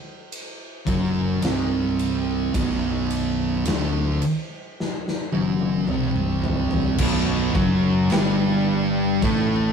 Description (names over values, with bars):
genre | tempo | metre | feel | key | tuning
stoner and doom metal | 54 BPM | 4/4 | straight | unclear | A4 = 440 Hz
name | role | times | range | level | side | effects
big rock drum kit | drums | 0.3-9.5 s | crash cymbal, kick drum, ride cymbal, snare drum, toms | -27 LUFS | left 1 dB | none
thick fuzz guitar | riff | 0.9-9.7 s | B1 to A3 | -27 LUFS | left 7 dB | distortion
thick fuzz guitar | riff | 0.9-9.7 s | B1 to A3 | -23 LUFS | right 4 dB | distortion
overdriven fingered electric bass | bass | 0.9-9.7 s | B0 to A1 | -27 LUFS | equal | tube saturation
distorted electric guitar | riff | 7.0-9.7 s | B1 to A3 | -26 LUFS | left 2 dB | overdrive
room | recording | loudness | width
light reverb | rough rehearsal-room recording | -20 LUFS | side -6 dB against mid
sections
0.0-7.0 A section; 7.0-9.7 B section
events
drum fill 4.8-7.0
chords
0.0 Bm; 7.0 B5